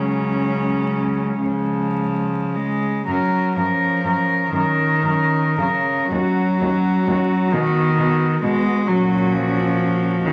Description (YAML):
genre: classical, lyrical piece for cello ensemble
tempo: 35-45 BPM (dotted quarters)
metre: 6/8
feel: rubato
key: F# major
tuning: A4 = 440 Hz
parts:
  - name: warm cello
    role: melody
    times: 0.0-10.3 s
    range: C#4 to A#4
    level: -25 LUFS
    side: equal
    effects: none
  - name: dark cello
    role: second line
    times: 0.0-10.3 s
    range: G#3 to C#4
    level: -28 LUFS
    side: equal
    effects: none
  - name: rich cello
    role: accompaniment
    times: 0.0-10.3 s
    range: C#3 to G#3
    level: -22 LUFS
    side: equal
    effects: none
  - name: rich cello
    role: bass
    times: 0.0-10.3 s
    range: D#2 to C#3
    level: -28 LUFS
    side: equal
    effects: none
room: moderate large studio reverb, RT60 1.1 s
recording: vinyl crackle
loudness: -19 LUFS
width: mono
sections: 0.0-3.1 A section; 3.1-10.3 A section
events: none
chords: 0.0 C#sus4; 1.4 C#; 3.1 F#; 6.1 D#m7 (rootless); 7.5 B; 8.9 F#/A#